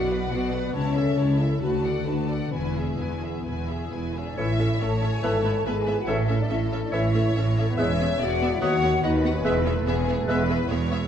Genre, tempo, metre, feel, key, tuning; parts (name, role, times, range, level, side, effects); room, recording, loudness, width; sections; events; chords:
classical, dramatic, fast romantic movement for symphony orchestra; 127-146 BPM; 4/4; rubato; A major; A4 = 444 Hz
warm symphonic violin section; melody; 0.0-11.0 s; D5 to A5; -38 LUFS; left 4 dB
warm symphonic violin section; second line; 0.0-11.1 s; G#4 to F#5; -34 LUFS; left 4 dB
rich symphonic viola section; accompaniment; 0.0-11.0 s; B3 to B4; -34 LUFS; right 2 dB
mellow French horn section; sustained chords; 0.0-10.7 s; A3 to A4; -28 LUFS; left 2 dB
concert harp; arpeggios; 0.0-11.1 s; G#2 to B4; -32 LUFS; left 6 dB
rich symphonic cello section; bass; 0.0-11.1 s; C#2 to B2; -29 LUFS; right 2 dB
warm symphonic double bass section; bass; 0.0-11.1 s; E1 to D#2; -29 LUFS; right 3 dB
small flute group; second line; 4.2-10.7 s; A4 to A5; -33 LUFS; left 4 dB
clear clarinet; second line; 4.4-10.4 s; B4 to C#5; -37 LUFS; left 1 dB
dark cor anglais; second line; 4.4-10.4 s; D#5 to E5; -37 LUFS; right 2 dB
mellow bassoon; accompaniment; 4.4-10.4 s; E3 to G#3; -35 LUFS; right 1 dB
wet scoring stage reverb, RT60 1.9 s; dark, warm production; -22 LUFS; side -9 dB against mid
0.0-4.4 A section; 4.4-11.1 B section
0.0 Bm; 0.8 A/C#; 1.6 Bm7/D; 2.5 E; 4.4 A; 5.2 E/G#; 6.1 A; 7.8 E; 8.6 B/D#; 9.5 E